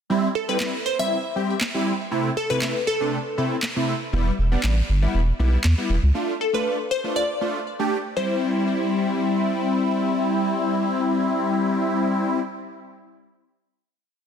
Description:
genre	dance-pop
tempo	119 BPM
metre	4/4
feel	straight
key	C major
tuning	A4 = 440 Hz
part	big bright polysynth	accompaniment	0.1-12.4 s	C3 to G4	-23 LUFS	left 1 dB	wide subtle chorus
part	glassy wavetable pluck	melody	0.4-3.3, 6.4-12.4 s	A4 to E5	-26 LUFS	left 1 dB	chorus, ping-pong delay
part	electronic handclaps and snare drum	drums	0.6-5.8 s	none	-29 LUFS	equal	overdrive
part	round analog bass	bass	4.1-6.1 s	E1 to E2	-19 LUFS	equal	none
room	light reverb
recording	dense, heavily limited modern master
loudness	-20 LUFS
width	side -8 dB against mid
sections	0.1-8.2 verse; 8.2-12.2 final chord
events	none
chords	0.1 C; 2.1 Am/C; 4.1 Em; 6.1 Dm; 8.2 C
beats	| 0.10 0.60 1.11 1.61 | 2.12 2.62 3.12 3.63 | 4.13 4.64 5.14 5.64 | 6.15 6.65 7.16 7.66 | 8.17 8.67 9.17 9.68 | 10.18 10.69 11.19 11.70

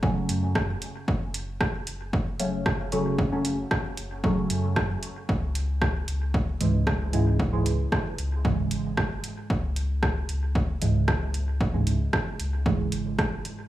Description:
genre	dub techno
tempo	114 BPM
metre	4/4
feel	straight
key	F# minor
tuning	A4 = 441 Hz
part	deep mellow chord stab	stabs	0.0-13.7 s	G#2 to C#4	-28 LUFS	right 1 dB	chorus, phaser, cassette tape, sidechain pumping, dub echo
part	pure sine sub bass	bass	0.0-13.4 s	F#1 to F#2	-29 LUFS	equal	sidechain pumping
part	electronic kick drum	drums	0.0-13.3 s	none	-28 LUFS	equal	overdrive
part	punchy analog drum machine	drums	0.3-13.6 s	hi-hat, rim click	-31 LUFS	equal	overdrive, dub echo
room	light reverb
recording	small room reverb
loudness	-24 LUFS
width	side -14 dB against mid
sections	0.0-13.7 A section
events	none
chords	0.0 F#m; 5.3 C#m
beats	0.03 0.55 | 1.08 1.61 2.13 2.66 | 3.19 3.71 4.24 4.76 | 5.29 5.82 6.34 6.87 | 7.40 7.92 8.45 8.97 | 9.50 10.03 10.55 11.08 | 11.61 12.13 12.66 13.19

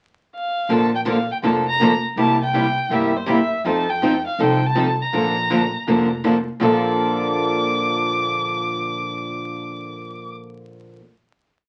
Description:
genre	acoustic string swing (jazz manouche)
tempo	162 BPM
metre	4/4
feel	swing 61% on 8ths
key	Bb major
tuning	A4 = 438 Hz
part	warm violin	melody	0.4-10.3 s	C5 to D6	-26 LUFS	equal	none
part	picked acoustic archtop guitar	accompaniment	0.7-11.0 s	Bb2 to A4	-25 LUFS	equal	none
part	picked steel-string acoustic guitar	accompaniment	0.7-11.0 s	Bb2 to A4	-24 LUFS	equal	none
part	upright bass	bass	0.7-11.0 s	F1 to F2	-32 LUFS	equal	none
room	wet studio reverb, RT60 0.6 s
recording	very old 78 rpm record, vinyl crackle, nothing above 10.3 kHz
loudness	-20 LUFS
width	mono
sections	0.0-0.7 pickup bar; 0.7-6.6 A section; 6.6-9.6 final chord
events	none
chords	0.0 N.C.; 0.7 Bbmaj7; 2.2 C7; 3.6 F7; 5.1 Bbmaj7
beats	0.31 | 0.68 1.05 1.42 1.79 | 2.16 2.53 2.90 3.27 | 3.64 4.01 4.38 4.75 | 5.12 5.50 5.87 6.24 | 6.61 6.98 7.35 7.72 | 8.09 8.46 8.83 9.20

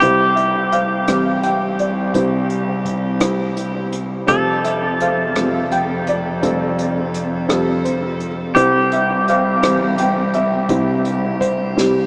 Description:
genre	acoustic folk-pop ballad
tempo	56 BPM (dotted quarters)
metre	6/8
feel	straight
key	C major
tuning	A4 = 436 Hz
part	felt-muted upright piano	melody	0.0-12.1 s	F1 to G5	-20 LUFS	equal	subtle chorus, analog delay
part	pedal steel guitar	second line	0.0-12.1 s	F4 to A4	-23 LUFS	equal	analog delay
part	warm cello	bass	0.0-12.1 s	C2 to F2	-25 LUFS	equal	none
part	unplugged drum kit	drums	0.0-11.9 s	hi-hat, kick drum, rim click, snare drum	-31 LUFS	equal	none
room	wet huge ambient reverb, RT60 8.5 s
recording	dreamy mix soaked in reverb, small speaker sound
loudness	-18 LUFS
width	mono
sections	0.0-12.1 A section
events	felt piano fill 7.5-8.6, 11.8-12.1; drum fill 11.8-12.1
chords	0.0 C; 4.3 Fadd9; 8.6 C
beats	| 0.01 1.07 | 2.14 3.21 | 4.28 5.35 | 6.42 7.49 | 8.56 9.62 | 10.69 11.77

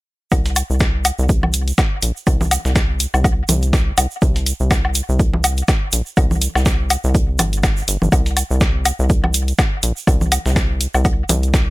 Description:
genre	minimal techno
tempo	123 BPM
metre	4/4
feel	swing 57% on 16ths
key	unclear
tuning	A4 = 441 Hz
part	rubbery square bass	bass	0.3-11.7 s	G1 to C2	-18 LUFS	equal	sidechain pumping
part	dusty soul sampler-style drum kit	drums	0.3-11.7 s	hi-hat, shaker, snare drum	-26 LUFS	equal	high-pass filter on perc, high-pass filter on hats, high-pass filter on snare, high-pass filter on room
part	electronic kick drum	drums	0.3-11.6 s	none	-16 LUFS	equal	none
part	tube shaker	percussion	0.3-11.7 s	none	-27 LUFS	right 8 dB	none
part	woodblock and congas	percussion	0.3-11.4 s	none	-21 LUFS	left 1 dB	digital delay
part	electronic hi-hat	drums	0.6-11.5 s	none	-21 LUFS	left 2 dB	none
room	little or no reverb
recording	none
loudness	-15 LUFS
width	side -20 dB against mid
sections	0.3-11.7 A section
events	none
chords	none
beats	| 0.32 0.81 1.29 1.78 | 2.27 2.76 3.25 3.73 | 4.22 4.71 5.20 5.68 | 6.17 6.66 7.15 7.63 | 8.12 8.61 9.10 9.59 | 10.07 10.56 11.05 11.54

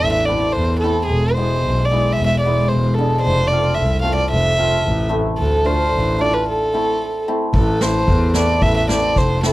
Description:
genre	klezmer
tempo	111 BPM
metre	2/4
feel	straight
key	A harmonic minor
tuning	A4 = 438 Hz
part	dark violin	melody	0.0-9.5 s	G#4 to F5	-19 LUFS	right 1 dB	none
part	clear double bass	bass	0.0-9.5 s	E1 to E2	-19 LUFS	equal	none
part	hammered dulcimer	accompaniment	0.3-9.5 s	G#3 to F4	-22 LUFS	left 1 dB	none
part	street-band drum kit	drums	7.5-9.5 s	kick drum, snare drum	-20 LUFS	equal	none
room	little or no reverb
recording	dry, close 1970s-style studio recording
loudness	-15 LUFS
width	side -17 dB against mid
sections	0.0-7.6 A section; 7.6-9.5 A section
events	break 6.5-7.6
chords	0.0 Am; 1.1 E; 3.2 F; 5.4 Dm; 6.5 Am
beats	| 0.02 0.56 | 1.10 1.64 | 2.17 2.71 | 3.25 3.79 | 4.33 4.87 | 5.40 5.94 | 6.48 7.02 | 7.56 8.10 | 8.64 9.18

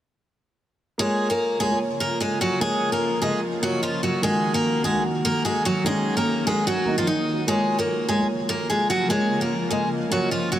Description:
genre	hip hop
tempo	148 BPM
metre	4/4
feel	half-time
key	Bb minor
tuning	A4 = 440 Hz
part	picked steel-string acoustic guitar	melody	1.0-10.6 s	F3 to Eb5	-22 LUFS	equal	none
part	dark concert grand piano	accompaniment	1.0-10.6 s	Eb3 to Eb5	-27 LUFS	right 1 dB	none
part	granular cloud pad	sustained chords	1.5-10.6 s	Db3 to Gb4	-31 LUFS	equal	built-in reverb
room	moderate huge ambient reverb, RT60 5.1 s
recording	none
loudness	-20 LUFS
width	side -12 dB against mid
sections	1.0-10.6 A section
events	none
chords	1.0 Bbm; 4.2 Ebm; 7.5 Bbm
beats	| 0.99 1.40 1.80 2.21 | 2.61 3.02 3.42 3.83 | 4.23 4.64 5.04 5.45 | 5.86 6.26 6.67 7.07 | 7.48 7.88 8.29 8.69 | 9.10 9.50 9.91 10.31

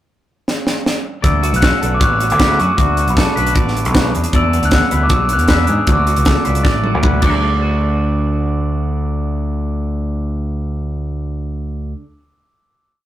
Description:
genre	math rock and midwest emo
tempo	156 BPM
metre	4/4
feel	straight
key	D lydian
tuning	A4 = 439 Hz
part	crisp fusion drum kit	drums	0.5-7.3 s	crash cymbal, hi-hat, kick drum, snare drum, toms	-16 LUFS	equal	none
part	glockenspiel with rubber mallets	melody	1.2-11.9 s	A5 to F#6	-19 LUFS	left 1 dB	none
part	twelve-string electric guitar	accompaniment	1.2-12.2 s	D2 to F#4	-24 LUFS	right 4 dB	none
part	twangy electric guitar	arpeggios	1.2-12.0 s	F#4 to D6	-23 LUFS	left 2 dB	none
part	growling fingered electric bass	bass	1.2-11.9 s	A1 to G#2	-18 LUFS	equal	overdrive
room	moderate studio reverb, RT60 0.6 s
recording	rough rehearsal-room recording, tube saturation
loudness	-13 LUFS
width	side -13 dB against mid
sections	0.0-1.2 pickup bar; 1.2-7.4 A section; 7.4-10.5 final hit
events	drum fill 0.5-1.2, 6.7-7.4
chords	0.0 N.C.; 1.2 D6; 4.1 E7; 5.9 Dmaj7; 7.2 D5; 7.4 D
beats	0.09 0.47 0.86 | 1.24 1.63 2.01 2.40 | 2.78 3.17 3.56 3.94 | 4.33 4.72 5.10 5.49 | 5.88 6.26 6.65 7.04 | 7.42 7.81 8.19 8.58 | 8.96 9.35 9.73 10.11

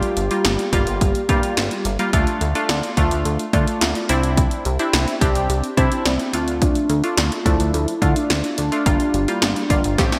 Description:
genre	synth-pop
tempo	107 BPM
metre	4/4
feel	straight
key	D minor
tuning	A4 = 440 Hz
part	warm velvety synth lead	melody	0.0-1.9, 6.1-10.2 s	C4 to G4	-26 LUFS	equal	chorus, delay
part	funky polysynth comp	accompaniment	0.0-10.2 s	F3 to G4	-25 LUFS	equal	chorus
part	punchy analog drum machine	drums	0.0-10.2 s	hi-hat, kick drum, snare drum	-23 LUFS	equal	gated reverb
part	chorused synth bass	bass	0.2-10.1 s	G1 to D3	-25 LUFS	equal	none
part	soft round pluck	arpeggios	2.1-10.2 s	F4 to D5	-32 LUFS	equal	chorus, delay
room	moderate lush hall reverb, RT60 2.0 s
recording	bright 1980s-style digital production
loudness	-19 LUFS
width	mono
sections	0.0-10.2 A section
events	drum fill 10.0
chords	0.0 Gm7; 2.1 Dm; 4.1 Cadd9; 6.3 Dm; 8.9 Gm7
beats	0.45 1.01 1.57 | 2.13 2.69 3.25 3.81 | 4.37 4.93 5.50 6.06 | 6.62 7.18 7.74 8.30 | 8.86 9.42 9.98

